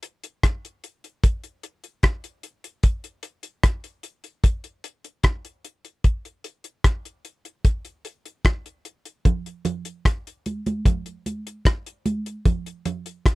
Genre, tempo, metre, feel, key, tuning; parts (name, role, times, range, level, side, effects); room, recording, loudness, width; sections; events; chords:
reggae; 75 BPM; 4/4; straight
damped 70s drum kit; drums; 0.0-13.3 s; hi-hat, kick drum, rim click; -19 LUFS; equal
congas; percussion; 9.3-13.0 s; -27 LUFS; right 4 dB
little or no reverb; dry, close 1970s-style studio recording; -22 LUFS; side -20 dB against mid
0.0-13.3 A section